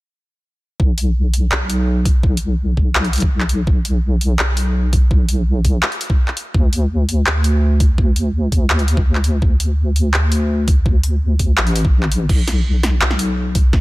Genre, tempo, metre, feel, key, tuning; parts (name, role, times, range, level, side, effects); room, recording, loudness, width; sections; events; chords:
half-time drum and bass; 167 BPM; 4/4; half-time; A4 = 440 Hz
deep soft wobble bass; bass; 0.8-13.8 s; A1 to D2; -16 LUFS; equal; chorus
electronic kick drum; drums; 0.8-13.8 s; -15 LUFS; equal; overdrive
drum and bass drum kit; drums; 1.0-13.8 s; crash cymbal, handclaps, hi-hat, snare drum; -21 LUFS; equal; overdrive
digital ambience; -14 LUFS; side -20 dB against mid
0.8-13.8 A section